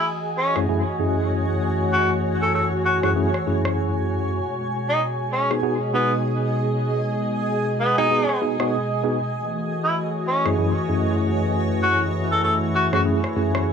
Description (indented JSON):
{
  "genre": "glitch hop",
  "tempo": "97 BPM",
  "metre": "4/4",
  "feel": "swing 60% on 16ths",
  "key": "F# dorian",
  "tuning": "A4 = 441 Hz",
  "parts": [
    { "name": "clear tenor saxophone", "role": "melody", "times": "0.0-13.0 s", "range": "B3 to A4", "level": "-23 LUFS", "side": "equal", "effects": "tape echo" },
    { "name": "warm analog pad", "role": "sustained chords", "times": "0.0-13.7 s", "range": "B2 to G#4", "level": "-27 LUFS", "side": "equal", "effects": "chorus" },
    { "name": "granular cloud pad", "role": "texture", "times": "0.0-13.7 s", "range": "F#4 to G#5", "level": "-26 LUFS", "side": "equal", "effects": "built-in reverb" },
    { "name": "mellow tine electric piano", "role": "stabs", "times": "0.6-13.7 s", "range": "F#2 to G#4", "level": "-24 LUFS", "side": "equal", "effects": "medium stereo tremolo, vintage 12-bit sampler grit, tape echo" },
    { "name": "electronic rim click", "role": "drums", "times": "0.6-13.6 s", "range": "none", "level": "-30 LUFS", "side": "equal", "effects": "overdrive, low-pass filter on hats, low-pass filter on snare, low-pass filter on cymbals, low-pass filter on room" }
  ],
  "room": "wet studio reverb, RT60 0.6 s",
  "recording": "none",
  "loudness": "-19 LUFS",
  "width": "side -7 dB against mid",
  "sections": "0.0-13.7 A section",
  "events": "filter sweep on analog synth pad 0.0-13.7",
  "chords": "0.0 F#m7; 4.4 G#m7; 9.3 F#m7",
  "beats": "0.07 0.68 1.30 | 1.92 2.54 3.16 3.78 | 4.40 5.01 5.63 6.25 | 6.87 7.49 8.11 8.72 | 9.34 9.96 10.58 11.20 | 11.82 12.44 13.05 13.67"
}